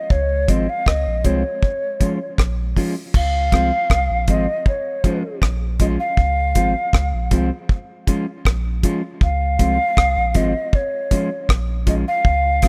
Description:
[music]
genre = roots reggae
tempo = 79 BPM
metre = 4/4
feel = straight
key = Db major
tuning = A4 = 442 Hz
[part]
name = mellow hollow jazz flute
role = melody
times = 0.0-12.7 s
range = Db5 to F5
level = -24 LUFS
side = equal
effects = tape echo
[part]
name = warm sub bass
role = bass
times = 0.1-12.7 s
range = Ab1 to Db2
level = -24 LUFS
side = equal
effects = none
[part]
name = deep reggae drum kit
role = drums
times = 0.1-12.7 s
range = crash cymbal, hi-hat, kick drum, rim click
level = -20 LUFS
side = equal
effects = none
[part]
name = mellow electric guitar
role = accompaniment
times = 0.5-12.7 s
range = F3 to F4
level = -28 LUFS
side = equal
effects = tape echo
[sound]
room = small room ambience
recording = rough home demo mix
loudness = -19 LUFS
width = mono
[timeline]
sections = 0.0-3.1 A section; 3.1-12.7 A section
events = none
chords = 0.1 Dbmaj7; 1.6 Bbm7; 3.1 Dbmaj7; 4.7 Bbm7; 6.2 Dbmaj7; 7.7 Bbm7; 9.2 Dbmaj7; 10.7 Bbm7

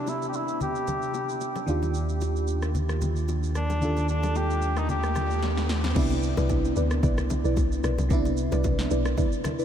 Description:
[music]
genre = amapiano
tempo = 112 BPM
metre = 4/4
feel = swing 55% on 16ths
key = unclear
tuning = A4 = 439 Hz
[part]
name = mellow cor anglais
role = melody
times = 0.0-5.7 s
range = D4 to G4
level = -32 LUFS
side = equal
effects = low-pass filter, ping-pong delay
[part]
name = FM electric piano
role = accompaniment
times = 0.0-9.6 s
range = C3 to A4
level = -30 LUFS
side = right 2 dB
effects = chorus, low-pass filter
[part]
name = downlifter and riser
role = sound effects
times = 0.0-6.0 s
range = none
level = -41 LUFS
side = equal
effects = none
[part]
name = deep house drum kit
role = drums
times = 0.1-9.6 s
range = crash cymbal, kick drum, rim click, shaker, snare drum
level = -31 LUFS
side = equal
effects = none
[part]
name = bongos and congas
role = percussion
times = 0.1-9.6 s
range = none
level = -35 LUFS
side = left 2 dB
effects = none
[part]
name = warm sub bass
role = bass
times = 1.7-5.9 s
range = Eb2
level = -27 LUFS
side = equal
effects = none
[part]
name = deep mellow chord stab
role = stabs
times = 6.0-9.6 s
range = E4 to D5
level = -32 LUFS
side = equal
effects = chorus, ping-pong delay
[part]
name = woody log drum bass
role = bass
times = 6.0-9.2 s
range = B1 to D2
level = -26 LUFS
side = equal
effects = none
[sound]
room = moderate huge ambient reverb, RT60 8.1 s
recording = dreamy mix soaked in reverb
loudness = -23 LUFS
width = side -9 dB against mid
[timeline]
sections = 0.0-6.0 A section; 6.0-9.6 B section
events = filter sweep 0.0-6.0; riser 1.7-6.0; drum fill 5.4-6.0; drop 6.0-9.6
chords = 0.0 Cmaj9; 1.7 Ebmaj9; 6.0 Cmaj9

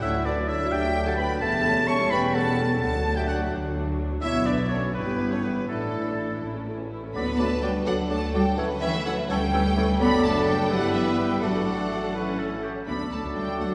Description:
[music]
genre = quick classical-period movement for symphony orchestra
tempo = 84 BPM (dotted quarters)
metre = 6/8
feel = rubato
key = D major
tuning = A4 = 442 Hz
[part]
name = warm studio violin section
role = melody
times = 0.0-13.7 s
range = A4 to C#6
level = -36 LUFS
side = equal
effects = none
[part]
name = clear oboe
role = second line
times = 0.0-13.7 s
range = G4 to C#6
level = -33 LUFS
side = equal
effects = none
[part]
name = dark clarinet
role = second line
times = 0.0-13.7 s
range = A3 to C#5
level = -35 LUFS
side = equal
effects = none
[part]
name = rich studio violin section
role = second line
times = 0.0-13.7 s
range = G4 to C#6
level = -36 LUFS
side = equal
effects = none
[part]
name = silver concert flute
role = second line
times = 0.0-13.7 s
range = E4 to E6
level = -38 LUFS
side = equal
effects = none
[part]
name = rich studio viola section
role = accompaniment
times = 0.0-13.7 s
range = D3 to B4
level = -36 LUFS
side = equal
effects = none
[part]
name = warm French horn section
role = sustained chords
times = 0.0-13.7 s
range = E3 to E4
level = -34 LUFS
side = equal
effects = none
[part]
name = rich studio cello section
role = bass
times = 0.0-13.7 s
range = D2 to B3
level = -32 LUFS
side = equal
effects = none
[part]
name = rich studio double bass section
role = bass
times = 0.0-13.7 s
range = E1 to D2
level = -34 LUFS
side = equal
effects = none
[part]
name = mellow bassoon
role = accompaniment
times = 7.2-13.7 s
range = E3 to A3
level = -36 LUFS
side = equal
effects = none
[sound]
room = wet concert hall reverb, RT60 1.8 s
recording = heard from further back in the room, nothing above 10.7 kHz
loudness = -25 LUFS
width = mono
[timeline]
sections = 0.0-7.2 A section; 7.2-13.7 B section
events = none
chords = 0.0 D; 1.4 A7/E; 2.8 D; 4.2 Bm; 4.9 Em/G; 5.7 Asus4; 6.4 A; 7.2 D; 8.6 A7/D; 10.0 D/F#; 10.7 Em/G; 11.4 D/A; 12.2 A; 12.9 D

